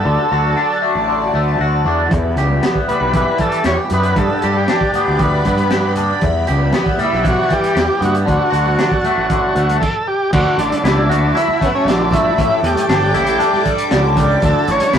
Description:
psychedelic rock; 117 BPM; 4/4; straight; A4 = 440 Hz
overdriven combo organ; melody; 0.0-14.9 s; B3 to C#5; -18 LUFS; right 1 dB
string machine, full ensemble; sustained chords; 0.0-15.0 s; F#4 to D6; -27 LUFS; equal; phaser, ensemble chorus
twangy electric guitar; riff; 0.0-15.0 s; E2 to G4; -18 LUFS; left 2 dB; phaser
fuzz fingered electric bass; bass; 0.1-15.0 s; G1 to E3; -18 LUFS; equal; overdrive
crunchy breakbeat drum kit; drums; 2.1-15.0 s; crash cymbal, hi-hat, kick drum, snare drum; -20 LUFS; equal
congas; percussion; 2.5-14.9 s; -30 LUFS; right 2 dB
moderate studio reverb, RT60 0.6 s; rough rehearsal-room recording; -13 LUFS; side -8 dB against mid
0.0-10.3 A section; 10.3-15.0 B section
stop 9.8-10.3
0.0 D; 2.1 Em; 4.2 G; 6.2 Em; 8.3 D; 10.3 Dadd9; 12.4 A7sus4; 14.4 Dadd9

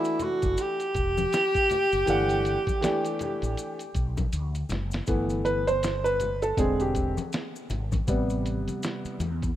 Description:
hip hop, jazz-hop; 80 BPM; 4/4; swing 59% on 16ths; G major; A4 = 440 Hz
breathy tenor saxophone; melody; 0.0-4.3 s; E4 to G4; -25 LUFS; right 1 dB
warm upright piano; accompaniment; 0.0-9.2 s; C3 to F#5; -28 LUFS; equal
maracas and congas; percussion; 0.0-9.6 s; -39 LUFS; left 5 dB
lo-fi sampler-style drum kit; drums; 0.1-9.6 s; hi-hat, kick drum, snare drum; -32 LUFS; equal
mellow fretless electric bass; bass; 0.4-9.5 s; E1 to E2; -30 LUFS; equal; ensemble chorus
light reverb; rough home demo mix; -24 LUFS; side -12 dB against mid
0.0-5.1 A section; 5.1-9.6 B section
drum fill 4.3-5.1; upright piano solo 5.1-9.6
0.0 G5; 5.1 G6; 6.6 Eaug7; 8.1 Am7

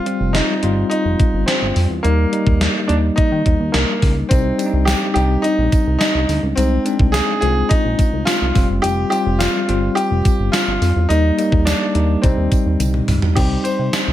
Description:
1980s-style pop; 106 BPM; 4/4; straight; C minor; A4 = 440 Hz
clear baby grand piano; melody; 0.0-14.1 s; Bb3 to C5; -21 LUFS; equal
bell-like tine electric piano; accompaniment; 0.0-14.1 s; G3 to C5; -21 LUFS; left 2 dB; fast stereo tremolo
gated 80s digital drum machine; drums; 0.1-14.1 s; crash cymbal, hi-hat, kick drum, snare drum, tambourine, toms; -18 LUFS; equal; gated reverb, gated reverb snare
chorused synth bass; bass; 0.2-14.1 s; F1 to Eb3; -18 LUFS; equal
tambourine; percussion; 4.3-14.1 s; -36 LUFS; right 13 dB
digital ambience; -14 LUFS; side -13 dB against mid
0.0-13.4 A section
drum fill 12.8-13.4
0.0 Fsus2; 2.0 Eb; 4.3 Cm; 6.6 Ab/C; 8.6 Fsus2; 11.1 Eb; 12.2 Cm

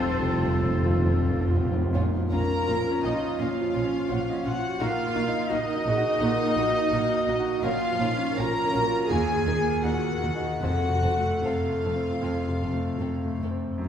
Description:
classical, romantic movement for piano and orchestra; 70-86 BPM; 4/4; rubato; Bb minor; A4 = 440 Hz
clear concert grand piano; melody; 0.0-13.9 s; Eb2 to A5; -28 LUFS; right 1 dB
warm symphonic violin section; melody; 0.0-13.4 s; F4 to Bb5; -35 LUFS; left 3 dB
concert flute; second line; 0.0-13.4 s; A4 to Bb5; -30 LUFS; left 1 dB
warm oboe; second line; 0.0-1.5 s; A4; -37 LUFS; equal
warm symphonic violin section; second line; 0.0-13.9 s; C4 to Bb4; -37 LUFS; left 3 dB
dark symphonic viola section; accompaniment; 0.0-13.4 s; Eb4 to C5; -33 LUFS; right 1 dB
dark French horn section; sustained chords; 0.0-13.4 s; C4 to Bb4; -32 LUFS; left 1 dB
dark chamber cello section; bass; 0.0-13.9 s; C2 to Bb2; -36 LUFS; right 2 dB
dark symphonic double bass section; bass; 0.0-13.9 s; F1 to Eb2; -34 LUFS; right 2 dB
mellow tuba; bass; 0.0-1.7 s; F1; -34 LUFS; right 2 dB
timpani; percussion; 0.0-1.9, 7.6-11.8 s; F2 to Bb2; -28 LUFS; equal
wet scoring stage reverb, RT60 1.5 s; heard from further back in the room; -23 LUFS; side -8 dB against mid
0.0-1.9 A section; 1.9-13.9 B section
timpani fill 0.0-1.9
0.0 F; 1.9 Bbm; 4.8 Ebm/Bb; 7.6 Bbm; 9.1 Ebm; 10.6 F

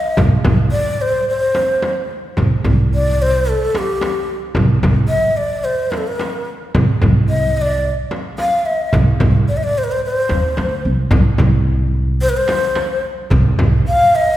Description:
Arabic maqam ensemble; 110 BPM; 4/4; straight; C maqam rast; A4 = 437 Hz
breathy low ney; melody; 0.0-14.4 s; G4 to F5; -17 LUFS; left 1 dB
upright bass; bass; 0.2-13.8 s; C2 to E2-50c; -17 LUFS; equal
darbuka; percussion; 0.2-14.2 s; -22 LUFS; right 2 dB
frame drum; percussion; 0.2-13.7 s; -21 LUFS; left 1 dB
wet concert hall reverb, RT60 1.9 s; heard from further back in the room; -14 LUFS; side -13 dB against mid
0.0-11.1 A section; 11.1-14.4 A section

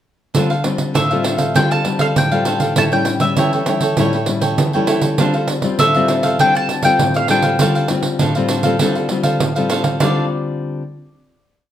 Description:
samba and choro; 99 BPM; 4/4; straight; D minor; A4 = 438 Hz
cavaquinho; accompaniment; 0.3-10.3 s; D4 to G5; -21 LUFS; right 3 dB
pandeiro; percussion; 0.3-10.1 s; -19 LUFS; right 3 dB
nylon-string guitar; accompaniment; 0.4-10.8 s; A2 to F4; -20 LUFS; left 4 dB
mandolin; melody; 1.0-10.3 s; D5 to A5; -18 LUFS; left 1 dB
wet large studio reverb, RT60 0.9 s; -14 LUFS; side -10 dB against mid
0.3-10.0 A section; 10.0-11.7 final chord
0.3 Dm11; 2.8 A7; 5.2 Dm11; 10.0 Dm7

